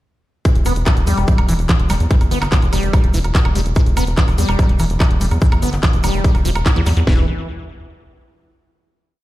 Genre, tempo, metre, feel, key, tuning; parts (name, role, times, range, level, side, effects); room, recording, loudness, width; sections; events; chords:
psychedelic trance; 145 BPM; 4/4; straight; E phrygian; A4 = 440 Hz
liquid acid bass; riff; 0.5-7.3 s; D3 to E4; -23 LUFS; equal; phaser, auto-pan, sidechain pumping, digital delay
garage drum kit; drums; 0.5-7.2 s; kick drum, snare drum; -14 LUFS; equal
garage drum kit; drums; 0.5-7.1 s; handclaps, hi-hat, woodblock; -24 LUFS; right 1 dB
egg shaker; percussion; 0.5-7.1 s; -36 LUFS; left 2 dB
tight sequencer bass; bass; 0.6-7.3 s; E1 to E2; -16 LUFS; equal
digital ambience; played on a big sound system in a bare room, large studio reverb; -13 LUFS; side -16 dB against mid
0.5-7.1 drop; 7.1-8.7 final note
drop 0.5-7.1; band accent 6.7
0.5 E5; 7.1 N.C.